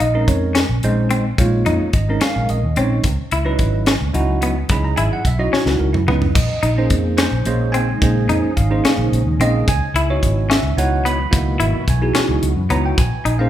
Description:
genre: electric jazz fusion.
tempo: 72 BPM (dotted quarters).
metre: 6/8.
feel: straight.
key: Bb minor.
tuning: A4 = 440 Hz.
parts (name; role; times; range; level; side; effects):
bell-like tine electric piano; accompaniment; 0.0-13.5 s; Gb3 to Cb6; -21 LUFS; right 2 dB; fast stereo tremolo, phaser.
semi-hollow electric guitar; stabs; 0.0-13.4 s; Cb4 to Fb4; -23 LUFS; left 3 dB; none.
vintage muted fingered electric bass; bass; 0.0-13.5 s; Ab1 to Gb2; -19 LUFS; equal; none.
tight funk drum kit; drums; 0.0-13.4 s; crash cymbal, hi-hat, kick drum, snare drum, toms; -20 LUFS; equal; none.
ethereal airy pad; sustained chords; 7.1-13.5 s; Cb3 to Eb5; -28 LUFS; equal; ensemble chorus, built-in reverb.
room: moderate large studio reverb, RT60 1.3 s.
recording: band playing live in one room.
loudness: -15 LUFS.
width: side -12 dB against mid.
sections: 0.0-13.5 A section.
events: drum fill 5.5-6.4.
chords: 0.0 Bbm11; 3.0 Dbm11; 6.4 Bbm11; 9.7 Dbm11; 13.0 Bbm11.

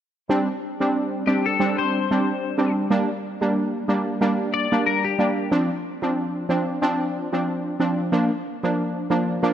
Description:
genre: dancehall.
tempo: 92 BPM.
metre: 4/4.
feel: swing 56% on 16ths.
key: unclear.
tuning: A4 = 441 Hz.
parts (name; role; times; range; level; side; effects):
synth brass stab; accompaniment; 0.3-9.5 s; F3 to D4; -21 LUFS; right 1 dB; chorus.
clean electric guitar; arpeggios; 1.3-5.5 s; G4 to D5; -24 LUFS; left 9 dB; analog chorus.
room: moderate lush hall reverb, RT60 2.7 s.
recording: dark, warm production.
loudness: -20 LUFS.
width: side -10 dB against mid.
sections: 0.3-9.5 A section.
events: none.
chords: 0.3 Csus2; 2.9 Gm; 5.5 Dm7; 8.1 Bb.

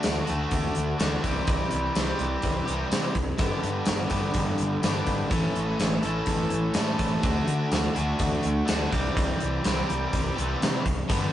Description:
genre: classic rock.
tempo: 125 BPM.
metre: 4/4.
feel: straight.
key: unclear.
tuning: A4 = 440 Hz.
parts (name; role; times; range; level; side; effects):
crunchy overdriven guitar; riff; 0.0-11.3 s; G2 to A4; -27 LUFS; equal; none.
gated 80s drum kit; drums; 0.0-11.2 s; hi-hat, kick drum, snare drum, tambourine; -27 LUFS; equal; none.
fuzz picked electric bass; bass; 0.1-11.3 s; G1 to D3; -30 LUFS; equal; overdrive.
room: moderate studio reverb, RT60 0.5 s.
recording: rough rehearsal-room recording, nothing above 10.4 kHz.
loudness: -23 LUFS.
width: side -12 dB against mid.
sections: 0.0-11.3 A section.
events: none.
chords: 0.0 D; 1.2 C; 3.4 G; 5.3 A; 7.2 D; 8.9 C.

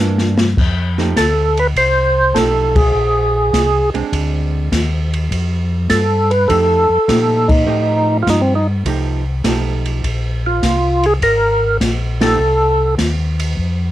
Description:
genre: soul jazz organ trio.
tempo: 102 BPM.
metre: 4/4.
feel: swing 69% on 8ths.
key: F mixolydian.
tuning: A4 = 440 Hz.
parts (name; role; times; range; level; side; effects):
archtop guitar, miked and amplified; accompaniment; 0.0-12.4 s; E3 to G4; -22 LUFS; right 7 dB; cassette tape.
mellow tonewheel organ; bass; 0.0-13.9 s; Ab1 to Bb2; -18 LUFS; left 1 dB; chorus vibrato, slow rotary speaker.
open jazz drum kit; drums; 0.2-13.8 s; crash cymbal, hi-hat, kick drum, ride cymbal, snare drum; -20 LUFS; equal; cassette tape.
percussive tonewheel organ; melody; 1.2-12.9 s; C4 to C5; -14 LUFS; right 1 dB; slow rotary speaker, overdrive, chorus vibrato, cassette tape.
room: light reverb.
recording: home recording on cassette.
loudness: -13 LUFS.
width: side -13 dB against mid.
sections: 0.6-13.9 A section.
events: drum fill 0.0-0.6; band accent 2.6, 7.4, 12.1.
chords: 0.0 C9 (rootless); 0.6 F9; 2.9 Bb9; 5.3 F9; 10.0 Bbsus2; 12.4 F7.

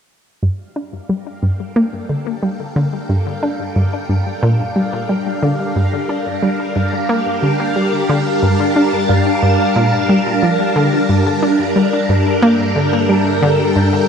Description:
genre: ambient, sequencer-driven space music.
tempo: 90 BPM.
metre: 4/4.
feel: straight.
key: G dorian.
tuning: A4 = 440 Hz.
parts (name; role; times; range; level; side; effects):
phased string machine; sustained chords; 0.4-14.1 s; G3 to A5; -18 LUFS; equal; ensemble chorus, phaser.
analog pluck; riff; 0.4-14.0 s; G2 to D4; -16 LUFS; equal; chorus, ping-pong delay.
bubbling stepped-filter texture; texture; 1.1-14.1 s; E5 to F5; -24 LUFS; right 1 dB; chorus, built-in reverb.
clean electric guitar; arpeggios; 11.1-14.0 s; none; barely audible; none; none.
analog drone; bass; 12.5-14.1 s; G2; -23 LUFS; left 1 dB; chorus.
room: wet huge ambient reverb, RT60 7.8 s.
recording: cassette tape.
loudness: -14 LUFS.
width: side -7 dB against mid.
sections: 0.4-11.1 A section; 11.1-14.1 B section.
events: fade-in on string machine 0.4-11.1; fade-in on synth texture 0.4-11.1.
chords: 0.4 Gmadd9.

